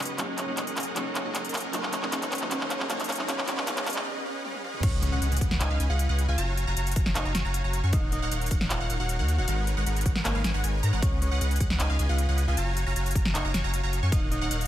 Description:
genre	future bass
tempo	155 BPM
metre	4/4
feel	half-time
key	unclear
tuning	A4 = 435 Hz
part	felt-muted upright piano	accompaniment	0.0-4.9 s	Gb3 to Eb4	-38 LUFS	right 2 dB	vintage 12-bit sampler grit, sidechain pumping, tape echo
part	airy breathy pad	sustained chords	0.0-4.0 s	Db3 to Bb4	-47 LUFS	left 1 dB	none
part	dense compressed supersaw	riff	0.0-14.7 s	Ab3 to Db6	-33 LUFS	right 1 dB	sidechain pumping
part	saturated sub bass	bass	0.0-14.7 s	Eb1 to Ab2	-27 LUFS	equal	tube saturation, sidechain pumping, high-pass filter
part	big-room dance drum kit	drums	0.0-14.7 s	crash cymbal, handclaps, hi-hat, snare drum, toms	-31 LUFS	equal	overdrive, studio reverb
part	riser, swell and impact	sound effects	0.0-6.4 s	none	-38 LUFS	equal	none
part	clean electric guitar	melody	0.2-14.6 s	Bb3 to Gb5	-37 LUFS	equal	sidechain pumping, tape echo
part	wide unison pluck	arpeggios	4.8-14.7 s	F5 to Db6	-36 LUFS	right 1 dB	phaser, sidechain pumping, tape echo
part	electronic kick drum	drums	4.8-14.2 s	none	-27 LUFS	equal	overdrive, studio reverb
room	light reverb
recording	high-pass filter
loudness	-24 LUFS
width	side -12 dB against mid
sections	0.0-4.8 A section; 4.8-14.7 B section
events	build-up 0.0-4.8; drum fill 0.0-4.1, 4.4-4.8; riser 0.0-4.1; break 4.1-4.8; swell 4.1-4.8; drop 4.8-14.7; impact 4.8-6.4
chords	0.2 Gbmaj9; 1.7 Ebm7; 3.3 Abm7; 4.8 Db9sus4; 6.4 Gbmaj9; 7.9 Ebm7; 9.5 Abm11; 11.0 Db9sus4; 12.6 Gbmaj9; 14.1 Ebm7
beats	| 0.19 0.57 0.96 1.35 | 1.74 2.12 2.51 2.90 | 3.28 3.67 4.06 4.44 | 4.83 5.22 5.61 5.99 | 6.38 6.77 7.15 7.54 | 7.93 8.31 8.70 9.09 | 9.48 9.86 10.25 10.64 | 11.03 11.41 11.80 12.19 | 12.57 12.96 13.35 13.73 | 14.12 14.51

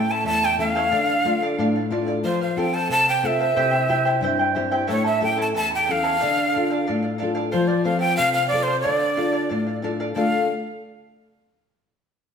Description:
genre	andean folk, Andean ensemble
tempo	91 BPM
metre	2/4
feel	straight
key	D minor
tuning	A4 = 440 Hz
part	breathy bright quena	melody	0.0-10.5 s	C5 to A5	-22 LUFS	equal	none
part	charango	accompaniment	0.0-10.4 s	E4 to A5	-26 LUFS	right 1 dB	none
part	nylon-string guitar	accompaniment	0.0-10.5 s	E2 to A4	-24 LUFS	left 2 dB	none
room	wet stone room reverb, RT60 1.3 s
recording	band playing live in one room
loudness	-19 LUFS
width	side -7 dB against mid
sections	0.0-10.2 A section; 10.2-11.5 B section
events	none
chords	0.0 A; 0.9 Dm; 2.2 F; 3.6 C; 4.9 A; 6.2 Dm; 7.5 F; 8.8 Dm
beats	0.26 | 0.92 1.58 | 2.25 2.91 | 3.57 4.23 | 4.88 5.54 | 6.20 6.86 | 7.52 8.18 | 8.84 9.49 | 10.15

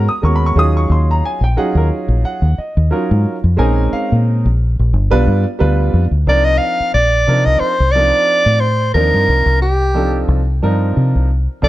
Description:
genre	electric jazz fusion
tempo	90 BPM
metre	4/4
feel	swing 56% on 16ths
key	C dorian from 6.3 s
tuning	A4 = 439 Hz
part	warm concert grand piano	accompaniment	0.0-11.7 s	F3 to Eb6	-19 LUFS	right 2 dB	plate reverb
part	deep dub fingered electric bass	bass	0.0-11.7 s	G1 to C3	-14 LUFS	equal	none
part	warm soprano saxophone	melody	6.3-11.7 s	G4 to F5	-14 LUFS	equal	plate reverb
room	light reverb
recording	dark, warm production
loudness	-12 LUFS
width	side -16 dB against mid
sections	0.0-6.3 A section; 6.3-11.7 B section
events	none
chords	0.0 Abm11; 0.6 Ebm11; 3.6 Bbm11; 4.9 G7; 6.3 Cm11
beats	0.23 | 0.91 1.58 2.25 2.92 | 3.59 4.26 4.93 5.60 | 6.27 6.94 7.62 8.29 | 8.96 9.63 10.30 10.97 | 11.64

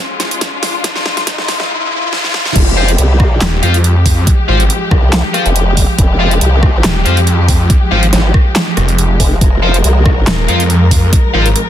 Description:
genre	heavy wobble dubstep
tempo	140 BPM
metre	4/4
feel	swing 53% on 16ths, half-time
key	F minor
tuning	A4 = 440 Hz
part	muted studio string section	sustained chords	0.0-11.7 s	F3 to Bb4	-19 LUFS	left 1 dB	sidechain pumping
part	riser	sound effects	0.0-2.6 s	none	-20 LUFS	equal	none
part	dubstep drum kit	drums	0.2-11.6 s	crash cymbal, handclaps, hi-hat, rim click, snare drum	-17 LUFS	right 1 dB	overdrive
part	electronic kick drum	drums	0.4-11.2 s	none	-11 LUFS	equal	overdrive
part	formant-sweep wobble bass	bass	2.6-10.3 s	F1 to C2	-12 LUFS	equal	chorus, overdrive
part	distorted electric guitar	stabs	2.8-11.5 s	F4 to F5	-18 LUFS	left 3 dB	distortion, dub echo
part	snarling distorted saw bass	bass	3.4-11.5 s	Eb1 to F2	-11 LUFS	equal	distortion, overdrive
room	little or no reverb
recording	dense, heavily limited modern master, high-pass filter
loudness	-9 LUFS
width	side -11 dB against mid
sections	0.0-2.6 A section; 2.6-11.7 B section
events	build-up 0.0-2.6; drum fill 0.0-1.7, 2.1-2.6; riser 0.0-2.6; drop 2.6-11.7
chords	0.0 Fm; 2.6 Fmadd9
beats	0.41 | 0.84 1.27 1.70 2.13 | 2.56 2.98 3.41 3.84 | 4.27 4.70 5.13 5.56 | 5.99 6.41 6.84 7.27 | 7.70 8.13 8.56 8.98 | 9.41 9.84 10.27 10.70 | 11.13 11.56

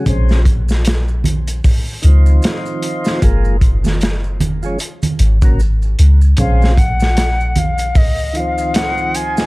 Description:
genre	trip hop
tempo	76 BPM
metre	4/4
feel	swing 58% on 16ths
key	Bb minor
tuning	A4 = 443 Hz
part	tonewheel organ	accompaniment	0.0-9.5 s	Db3 to Db4	-23 LUFS	equal	slow rotary speaker, harmonic tremolo, tape echo
part	soft 808-style bass	bass	0.1-9.5 s	Gb1 to Db2	-14 LUFS	equal	none
part	crunchy breakbeat drum kit	drums	0.1-9.5 s	hi-hat, kick drum, snare drum	-16 LUFS	equal	none
part	maracas and congas	percussion	0.1-9.5 s	none	-22 LUFS	right 3 dB	none
part	concert flute	melody	6.4-9.5 s	Eb5 to Ab5	-19 LUFS	left 1 dB	tape echo
room	small room ambience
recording	dark, warm production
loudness	-12 LUFS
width	side -22 dB against mid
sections	0.0-9.5 A section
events	none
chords	0.1 Bbm7; 1.6 Dbmaj9; 3.2 Gbmaj9; 4.8 Ab9sus4; 6.4 Bbm7; 8.0 Dbmaj9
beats	| 0.06 0.85 1.64 2.43 | 3.22 4.01 4.80 5.59 | 6.38 7.17 7.96 8.75

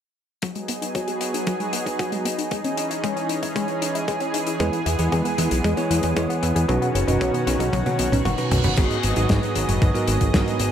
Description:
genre	italo disco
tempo	115 BPM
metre	4/4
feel	straight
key	G# minor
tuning	A4 = 440 Hz
part	lush unison pad	sustained chords	0.4-10.7 s	D#3 to D#5	-26 LUFS	equal	chorus
part	analog pluck	arpeggios	0.4-8.7 s	F#3 to G#4	-28 LUFS	left 2 dB	chorus, phaser, digital delay
part	damped 70s drum kit	drums	0.4-10.7 s	crash cymbal, hi-hat, snare drum, toms	-28 LUFS	left 2 dB	small room ambience, gated reverb
part	electronic kick drum	drums	0.4-10.4 s	none	-24 LUFS	equal	overdrive, high-pass filter on kick, small room ambience, high-pass filter on room
part	bell-like tine electric piano	stabs	4.6-10.7 s	G#2 to C#5	-25 LUFS	right 2 dB	vintage 12-bit sampler grit, digital delay
part	fat analog bass	bass	4.6-10.7 s	F#1 to E2	-24 LUFS	equal	none
part	reverse cymbal	sound effects	8.1-8.8 s	none	-32 LUFS	right 6 dB	none
room	moderate plate reverb, RT60 1.9 s, small room ambience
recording	bright 1980s-style digital production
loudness	-20 LUFS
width	side -9 dB against mid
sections	0.4-8.8 A section; 8.8-10.7 B section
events	filter sweep on synth arpeggio sound 0.4-8.8; drum fill 7.7-8.8; reverse cymbal 8.1-8.8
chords	0.4 G#m7; 2.5 C#madd9; 4.6 E; 6.7 Badd9; 8.8 G#m7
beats	| 0.43 0.95 1.47 1.99 | 2.51 3.04 3.56 4.08 | 4.60 5.12 5.64 6.17 | 6.69 7.21 7.73 8.25 | 8.78 9.30 9.82 10.34

